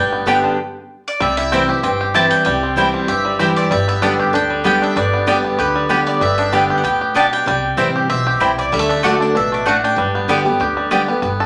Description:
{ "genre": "bluegrass", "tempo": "192 BPM", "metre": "4/4", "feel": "swing 54% on 8ths", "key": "G major", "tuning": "A4 = 440 Hz", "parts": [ { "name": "bluegrass banjo", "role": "melody", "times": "0.0-11.5 s", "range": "D3 to A4", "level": "-22 LUFS", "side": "equal", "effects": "none" }, { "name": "mandolin", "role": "melody", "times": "0.0-10.9 s", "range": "B4 to A5", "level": "-22 LUFS", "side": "equal", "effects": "none" }, { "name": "picked steel-string acoustic guitar", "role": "accompaniment", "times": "0.0-11.5 s", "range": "G2 to G4", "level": "-22 LUFS", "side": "equal", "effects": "none" }, { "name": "upright bass", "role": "bass", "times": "0.0-11.5 s", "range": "G1 to D2", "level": "-30 LUFS", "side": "equal", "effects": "none" }, { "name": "mandolin", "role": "stabs", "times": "0.3-11.0 s", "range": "A3 to G5", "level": "-21 LUFS", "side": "equal", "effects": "none" } ], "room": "wet large studio reverb, RT60 0.9 s", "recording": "none", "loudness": "-16 LUFS", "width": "mono", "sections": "0.0-1.2 A section; 1.2-11.2 B section", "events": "stop 0.6-1.2", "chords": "0.0 G; 1.2 C; 3.7 G; 7.5 C; 8.7 D; 10.0 G", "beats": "0.27 0.59 0.90 | 1.21 1.52 1.84 2.15 | 2.46 2.77 3.09 3.40 | 3.71 4.03 4.34 4.65 | 4.96 5.28 5.59 5.90 | 6.22 6.53 6.84 7.16 | 7.47 7.78 8.10 8.41 | 8.72 9.04 9.35 9.66 | 9.97 10.29 10.60 10.91 | 11.23" }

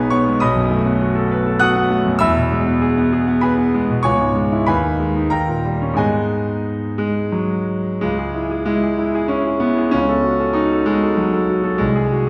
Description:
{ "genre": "classical, virtuoso piano study", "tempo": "86-102 BPM", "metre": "3/4", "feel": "rubato", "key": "G# minor, C# minor from 8.0 s", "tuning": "A4 = 439 Hz", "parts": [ { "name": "bright concert grand piano", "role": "solo", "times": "0.0-12.3 s", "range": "B1 to F#6", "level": "-18 LUFS", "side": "equal", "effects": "none" } ], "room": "wet recital hall reverb, RT60 1.6 s", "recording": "heard from further back in the room", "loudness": "-18 LUFS", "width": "mono", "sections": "0.0-8.0 A section; 8.0-12.3 B section", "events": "none", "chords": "0.4 B7; 2.2 E; 4.0 C#m; 4.7 G#m/D#; 5.3 D#7; 6.0 G#m; 8.0 C#m; 9.9 F#m69/C#", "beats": "| 0.40 0.99 1.60 | 2.20 2.80 3.42 | 4.03 4.65 5.29 | 5.97 6.65 7.33 | 8.02 8.66 9.30 | 9.94 10.57 11.19 | 11.80" }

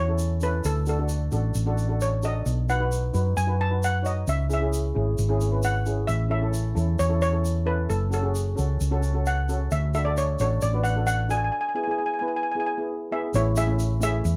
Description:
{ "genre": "calypso", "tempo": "132 BPM", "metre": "4/4", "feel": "straight", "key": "A major", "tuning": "A4 = 440 Hz", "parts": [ { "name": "steel pan", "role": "melody", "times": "0.0-14.4 s", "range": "E4 to A5", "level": "-30 LUFS", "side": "equal", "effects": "none" }, { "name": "hollow-body short-scale fingered electric bass", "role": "bass", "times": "0.0-14.4 s", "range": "F#1 to F#2", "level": "-26 LUFS", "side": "equal", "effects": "none" }, { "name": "steel pan", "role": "accompaniment", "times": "0.1-14.3 s", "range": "A3 to C#5", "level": "-33 LUFS", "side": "equal", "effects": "none" }, { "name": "egg shaker", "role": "percussion", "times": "0.2-14.4 s", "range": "none", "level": "-42 LUFS", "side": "equal", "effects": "none" } ], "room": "light reverb", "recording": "dark, warm production", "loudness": "-25 LUFS", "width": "mono", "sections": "0.0-13.3 A section; 13.3-14.4 B section", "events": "none", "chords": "0.0 A; 0.6 D; 2.5 B; 4.3 C#m; 6.1 A; 7.9 F#m; 9.7 D; 11.5 E; 13.3 A", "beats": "0.19 | 0.64 1.10 1.55 2.00 | 2.46 2.91 3.37 3.82 | 4.27 4.72 5.18 5.63 | 6.09 6.54 6.99 7.45 | 7.90 8.35 8.81 9.26 | 9.72 10.17 10.62 11.08 | 11.53 11.98 12.44 12.89 | 13.34 13.79 14.25" }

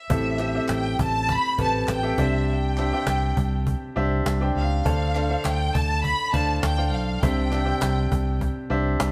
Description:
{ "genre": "piano-driven pop", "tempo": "101 BPM", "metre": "4/4", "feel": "straight", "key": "C major", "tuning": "A4 = 441 Hz", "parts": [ { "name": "rich studio violin section", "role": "melody", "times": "0.0-8.4 s", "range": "E5 to B5", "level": "-30 LUFS", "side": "equal", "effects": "none" }, { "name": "clear grand piano", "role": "accompaniment", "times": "0.1-9.1 s", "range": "A2 to G5", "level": "-29 LUFS", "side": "equal", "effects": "none" }, { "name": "fingered electric bass", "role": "bass", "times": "0.1-9.1 s", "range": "A1 to D2", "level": "-27 LUFS", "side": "equal", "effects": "none" }, { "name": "cajon", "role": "drums", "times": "0.1-9.1 s", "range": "none", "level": "-30 LUFS", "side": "equal", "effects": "none" }, { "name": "group handclap", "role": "percussion", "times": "0.4-9.1 s", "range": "none", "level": "-42 LUFS", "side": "equal", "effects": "none" } ], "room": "moderate stone room reverb, RT60 1.1 s", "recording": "band playing live in one room", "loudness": "-24 LUFS", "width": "mono", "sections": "0.1-9.1 A section", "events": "none", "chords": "0.1 Am7; 2.2 Cadd9; 4.9 Dm7; 7.2 Cadd9", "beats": "| 0.10 0.69 1.29 1.88 | 2.48 3.07 3.67 4.26 | 4.85 5.45 6.04 6.63 | 7.23 7.82 8.42 9.01" }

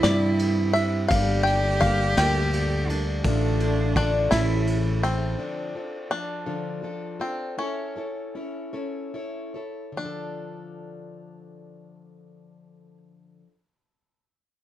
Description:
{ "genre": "acoustic folk duo or small band", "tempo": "47-56 BPM (dotted quarters)", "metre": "6/8", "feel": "straight", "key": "D minor", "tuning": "A4 = 440 Hz", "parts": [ { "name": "bluegrass banjo", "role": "melody", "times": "0.0-13.0 s", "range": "C4 to G5", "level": "-27 LUFS", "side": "left 2 dB", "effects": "plate reverb" }, { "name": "warm cello", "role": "second line", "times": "0.0-5.0 s", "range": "D4 to G4", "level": "-28 LUFS", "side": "right 3 dB", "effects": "none" }, { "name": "picked plugged-in steel-string acoustic guitar", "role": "accompaniment", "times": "0.0-13.6 s", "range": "G2 to C#5", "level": "-31 LUFS", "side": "left 2 dB", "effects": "none" }, { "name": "hand-pumped harmonium", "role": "sustained chords", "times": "0.0-5.4 s", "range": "C#3 to G4", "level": "-38 LUFS", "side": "right 2 dB", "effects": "none" }, { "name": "fretless electric bass", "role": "bass", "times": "0.0-5.3 s", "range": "G1 to G2", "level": "-24 LUFS", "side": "equal", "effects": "none" }, { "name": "vintage brush drum kit", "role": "drums", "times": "0.0-5.2 s", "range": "kick drum, ride cymbal, snare drum", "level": "-31 LUFS", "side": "equal", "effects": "none" } ], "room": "moderate studio ambience, RT60 0.5 s", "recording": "dark, warm production", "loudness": "-23 LUFS", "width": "side -13 dB against mid", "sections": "0.0-5.4 A section; 5.4-10.0 B section; 10.0-14.6 C section", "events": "slowing down 5.4-10.0", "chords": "0.0 C; 1.1 Gm; 3.2 Dm/A; 4.3 A; 5.4 Dm; 7.6 A/C#; 10.0 Dm", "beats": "0.04 | 1.11 2.17 | 3.24 4.31 | 5.39 6.47 | 7.58 8.74 | 9.96 11.23 | 12.49" }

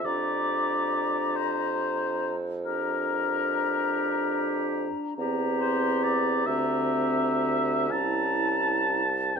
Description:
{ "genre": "classical, slow romantic movement for wind quintet", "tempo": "39-48 BPM (dotted quarters)", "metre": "12/8", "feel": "rubato", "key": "unclear", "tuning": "A4 = 440 Hz", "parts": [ { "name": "mellow oboe", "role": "second line", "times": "0.0-9.4 s", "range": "Bb4 to A5", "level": "-28 LUFS", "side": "left 2 dB", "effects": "none" }, { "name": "clear clarinet", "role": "accompaniment", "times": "0.0-9.4 s", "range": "E4 to G4", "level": "-33 LUFS", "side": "right 8 dB", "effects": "none" }, { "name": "mellow French horn", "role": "accompaniment", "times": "0.0-9.4 s", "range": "C4 to D4", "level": "-33 LUFS", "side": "left 1 dB", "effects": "none" }, { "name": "mellow bassoon", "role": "bass", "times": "0.0-9.4 s", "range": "C2 to F2", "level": "-31 LUFS", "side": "right 3 dB", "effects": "none" }, { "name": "concert flute", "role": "melody", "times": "0.1-9.4 s", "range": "Bb5", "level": "-33 LUFS", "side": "left 12 dB", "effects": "none" } ], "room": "moderate recital hall reverb, RT60 1.8 s", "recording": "close, detailed microphones", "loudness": "-24 LUFS", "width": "side -6 dB against mid", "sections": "0.0-9.4 A section", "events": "none", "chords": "0.1 Gm7/F; 5.2 C7/E; 7.9 C7b9", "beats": "| 0.06 1.36 2.66 3.94 | 5.18 6.47 7.92 9.37" }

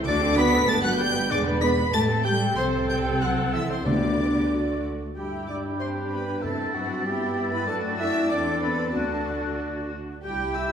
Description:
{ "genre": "quick classical-period movement for symphony orchestra", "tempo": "94 BPM", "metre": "2/4", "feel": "straight", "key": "G major", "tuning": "A4 = 440 Hz", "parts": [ { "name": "warm symphonic viola section", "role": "accompaniment", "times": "0.0-10.7 s", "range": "G#3 to B4", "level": "-31 LUFS", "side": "right 1 dB", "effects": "none" }, { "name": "dark chamber double bass section", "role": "bass", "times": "0.0-10.7 s", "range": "E1 to G2", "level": "-31 LUFS", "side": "right 2 dB", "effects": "none" }, { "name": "warm chamber violin section", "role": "melody", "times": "0.1-10.7 s", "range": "F#5 to B6", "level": "-32 LUFS", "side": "left 3 dB", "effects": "none" }, { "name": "clear oboe", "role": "second line", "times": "0.1-10.7 s", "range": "C5 to B5", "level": "-32 LUFS", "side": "equal", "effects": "none" }, { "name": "mellow large flute ensemble", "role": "second line", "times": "0.1-10.7 s", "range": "C5 to A6", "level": "-32 LUFS", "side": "left 2 dB", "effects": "none" }, { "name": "warm chamber violin section", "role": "second line", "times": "0.1-10.7 s", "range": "F#4 to B5", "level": "-36 LUFS", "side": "left 3 dB", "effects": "none" }, { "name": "mellow French horn section", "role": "sustained chords", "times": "0.1-10.6 s", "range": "F#3 to B4", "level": "-30 LUFS", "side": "left 2 dB", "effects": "none" }, { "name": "warm chamber cello section", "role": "bass", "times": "0.1-10.7 s", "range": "C3 to A4", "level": "-30 LUFS", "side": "right 1 dB", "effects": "none" }, { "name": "timpani", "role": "percussion", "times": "3.9-7.3 s", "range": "G2 to D3", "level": "-31 LUFS", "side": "left 1 dB", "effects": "none" }, { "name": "clear clarinet", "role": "second line", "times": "5.2-10.7 s", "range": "C4 to E4", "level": "-35 LUFS", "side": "left 1 dB", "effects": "none" }, { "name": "mellow trumpet", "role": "stabs", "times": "5.2-10.7 s", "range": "F#4 to E5", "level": "-33 LUFS", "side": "right 3 dB", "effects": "none" } ], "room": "wet recital hall reverb, RT60 1.5 s", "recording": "recorded in a church or concert hall", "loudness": "-22 LUFS", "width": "side -8 dB against mid", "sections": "0.0-5.2 A section; 5.2-10.7 B section", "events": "none", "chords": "0.1 D7; 0.7 G; 1.3 E7; 1.9 Am7; 2.6 Am/C; 3.9 G/D; 4.5 D; 5.2 G; 6.4 Am7/G; 7.7 D7/F#; 9.0 D", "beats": "| 0.07 0.69 | 1.31 1.94 | 2.58 3.22 | 3.87 4.52 | 5.17 5.81 | 6.43 7.06 | 7.68 8.31 | 8.95 9.60 | 10.25" }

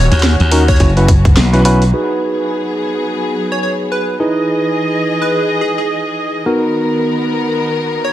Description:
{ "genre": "glitch hop", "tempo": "106 BPM", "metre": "4/4", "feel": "swing 59% on 16ths", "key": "G# minor", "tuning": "A4 = 441 Hz", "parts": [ { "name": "plucky unison lead", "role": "melody", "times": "0.0-8.1 s", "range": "G#4 to C#5", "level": "-22 LUFS", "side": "right 1 dB", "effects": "dub echo" }, { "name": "warm studio string section", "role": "sustained chords", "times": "0.0-8.1 s", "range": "D#3 to D#5", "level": "-19 LUFS", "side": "left 1 dB", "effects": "sidechain pumping" }, { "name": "glassy slap bass", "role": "bass", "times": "0.1-1.9 s", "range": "F#1 to D#2", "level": "-11 LUFS", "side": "equal", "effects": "none" }, { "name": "drum and bass drum kit", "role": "drums", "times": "0.1-2.1 s", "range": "crash cymbal, hi-hat, snare drum", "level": "-19 LUFS", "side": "equal", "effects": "low-pass filter on hats, small room reverb, low-pass filter on snare, low-pass filter on cymbals" }, { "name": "tine electric piano", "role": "stabs", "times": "0.5-8.1 s", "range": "B3 to C#5", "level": "-17 LUFS", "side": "right 1 dB", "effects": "sidechain pumping, low-pass filter, dub echo" }, { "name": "electronic kick drum", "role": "drums", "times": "0.7-1.3 s", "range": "none", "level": "-10 LUFS", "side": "equal", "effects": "small room reverb" } ], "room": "light reverb", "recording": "none", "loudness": "-12 LUFS", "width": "side -13 dB against mid", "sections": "0.0-1.9 A section; 1.9-8.1 B section", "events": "drop 0.0-1.9; kick drops out 1.4-1.9; filter sweep on tine electric piano 1.9-8.1", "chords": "0.0 D#m7; 0.8 F#7sus4; 1.9 G#m7; 4.2 Emaj7; 6.5 Bmaj7", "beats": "0.23 0.80 1.37 | 1.93 2.50 3.06 3.63 | 4.20 4.76 5.33 5.90 | 6.46 7.03 7.59" }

